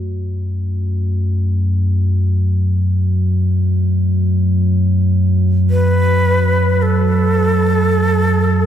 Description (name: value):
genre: dark ambient drone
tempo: free time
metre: none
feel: none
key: F# minor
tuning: A4 = 438 Hz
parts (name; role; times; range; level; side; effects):
- deep rumbling drone; drone; 0.0-8.7 s; F#2 to F#3; -14 LUFS; equal; built-in reverb
- bronze singing bowl; texture; 0.0-8.7 s; A3 to F#4; -33 LUFS; left 4 dB; none
- breathy bright shakuhachi; melody; 5.7-8.7 s; A4 to B4; -17 LUFS; left 2 dB; ping-pong delay
room: wet cathedral reverb, RT60 5.4 s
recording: in a vast, echoing space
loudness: -13 LUFS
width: side -10 dB against mid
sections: 0.0-8.7 A section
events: none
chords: 0.0 F#m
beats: free time